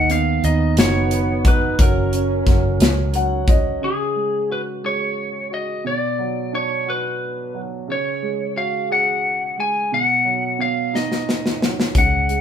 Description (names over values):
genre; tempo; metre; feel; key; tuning
six-eight pop ballad; 59 BPM (dotted quarters); 6/8; straight; unclear; A4 = 440 Hz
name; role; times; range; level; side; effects
lightly driven lead guitar; melody; 0.0-12.4 s; G#4 to G#5; -21 LUFS; left 2 dB; none
mellow French horn section; second line; 0.0-3.5 s; B3 to D#4; -27 LUFS; right 2 dB; none
warm baby grand piano; accompaniment; 0.0-12.4 s; B2 to F#5; -24 LUFS; right 4 dB; none
vintage muted fingered electric bass; bass; 0.0-3.8, 12.0-12.4 s; F#1 to D#2; -21 LUFS; left 1 dB; none
modern studio drum kit; drums; 0.1-3.6, 11.0-12.4 s; hi-hat, kick drum, snare drum; -18 LUFS; left 1 dB; none
room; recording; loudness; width
moderate studio reverb, RT60 0.7 s; band playing live in one room; -17 LUFS; side -8 dB against mid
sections
0.0-3.8 A section; 3.8-12.4 B section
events
grand piano fill 2.8-3.8; drum fill 10.9-11.9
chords
0.0 B/D#; 1.8 F#; 3.8 C#sus4; 5.8 Bm; 7.9 C#sus4; 9.9 B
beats
0.77 | 1.78 2.80 | 3.82 4.83 | 5.85 6.87 | 7.88 8.90 | 9.92 10.93 | 11.95